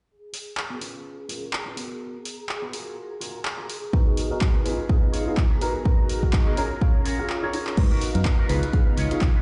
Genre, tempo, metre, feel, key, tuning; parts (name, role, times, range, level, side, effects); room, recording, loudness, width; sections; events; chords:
filtered disco house; 125 BPM; 4/4; swing 56% on 16ths; G# dorian; A4 = 441 Hz
phased string machine; sustained chords; 0.1-9.4 s; D#4 to A#5; -40 LUFS; equal; ensemble chorus, phaser, vintage 12-bit sampler grit, sidechain pumping, low-pass filter
tambourine; percussion; 0.1-9.3 s; -53 LUFS; equal
electric guitar with an envelope filter; riff; 0.3-9.4 s; B3 to C#5; -38 LUFS; equal; vintage 12-bit sampler grit, sidechain pumping, low-pass filter
punchy analog drum machine; drums; 0.3-9.3 s; crash cymbal, handclaps, hi-hat; -35 LUFS; equal; sidechain pumping on hats, sidechain pumping on cymbals
warm baby grand piano; accompaniment; 3.9-9.2 s; B3 to E#5; -31 LUFS; equal; phaser, sidechain pumping, low-pass filter
electronic kick drum; drums; 3.9-9.3 s; -22 LUFS; equal; overdrive
fingered electric bass; bass; 7.8-9.3 s; B1 to G#2; -27 LUFS; equal; sidechain pumping, low-pass filter
light reverb; played on a big sound system in a bare room, large studio reverb, nothing above 11.0 kHz; -24 LUFS; mono
0.1-7.8 A section; 7.8-9.4 B section
filter sweep 0.1-7.8; break 7.3-7.8; drum fill 7.3-7.8
0.1 G#m9; 0.8 C#7; 1.8 G#m9; 2.7 F#maj9; 3.9 G#m9; 4.7 C#7; 5.6 G#m9; 6.6 F#maj9; 7.8 G#m9; 8.5 C#7